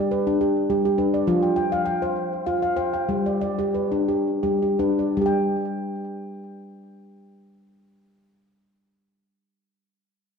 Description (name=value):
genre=world meditative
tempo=77-103 BPM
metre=3/4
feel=straight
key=unclear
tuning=A4 = 443 Hz
part: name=handpan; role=solo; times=0.0-9.6 s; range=F3 to G5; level=-21 LUFS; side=equal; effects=ping-pong delay
room=wet recital hall reverb, RT60 1.4 s, small room ambience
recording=dark, warm production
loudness=-20 LUFS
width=side -6 dB against mid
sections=0.0-5.2 A section; 5.2-9.8 B section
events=slowing down 1.3-5.2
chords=0.0 G; 1.3 F5; 3.1 G; 5.2 N.C.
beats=0.12 0.71 | 1.29 1.87 2.47 | 3.09 3.75 4.44 | 5.18 5.96 6.73 | 7.51 8.29 9.06